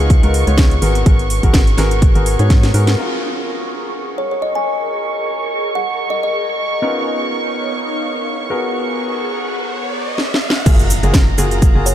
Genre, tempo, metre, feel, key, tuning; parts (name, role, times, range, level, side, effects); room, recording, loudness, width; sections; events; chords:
piano house; 125 BPM; 4/4; swing 55% on 16ths; F# major; A4 = 438 Hz
warm chamber violin section; sustained chords; 0.0-11.9 s; A#5 to C#6; -25 LUFS; right 3 dB; sidechain pumping, low-pass filter
clear grand piano; riff; 0.0-11.9 s; A#3 to C#5; -22 LUFS; left 1 dB; sidechain pumping, tape echo
organ-like FM bass; bass; 0.0-3.0, 10.7-11.9 s; F#1 to G#2; -16 LUFS; equal; sidechain pumping
electronic kick drum; drums; 0.1-2.6, 10.7-11.7 s; -12 LUFS; equal
house drum kit; drums; 0.1-3.0, 10.2-11.9 s; cabasa, crash cymbal, hi-hat, snare drum; -21 LUFS; equal
airy breathy pad; texture; 3.0-10.2 s; B3 to F#5; -26 LUFS; equal; chorus, phaser, sidechain pumping
kalimba; melody; 4.2-6.3, 11.9 s; C#5 to G#5; -23 LUFS; left 1 dB; tape echo
riser and impact; sound effects; 8.3-11.9 s; -24 LUFS; equal
moderate huge ambient reverb, RT60 5.1 s; dreamy mix soaked in reverb; -14 LUFS; side -11 dB against mid
0.0-3.0 A section; 3.0-10.7 B section; 10.7-11.9 C section
drum fill 2.5-3.0, 10.2-10.7; band accent 2.9; filter sweep on violin section 3.0-10.7; riser 8.3-10.7; drop 10.7-11.9; impact 10.7-11.9
0.0 C#13; 0.8 G#m9; 3.0 F#maj9; 6.8 C#13; 8.5 G#m9; 10.7 F#maj9